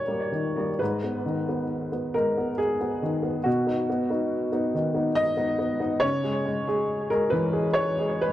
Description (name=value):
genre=neoclassical minimalist piano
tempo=69 BPM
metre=3/4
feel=rubato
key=G# minor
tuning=A4 = 440 Hz
part: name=warm upright piano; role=solo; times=0.0-8.3 s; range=G#2 to D#5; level=-23 LUFS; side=equal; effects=tape echo
room=wet studio reverb, RT60 0.6 s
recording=cassette tape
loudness=-23 LUFS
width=side -13 dB against mid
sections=0.8-8.3 A section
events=none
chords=0.0 D#; 0.8 G#m; 3.5 B; 6.0 C#m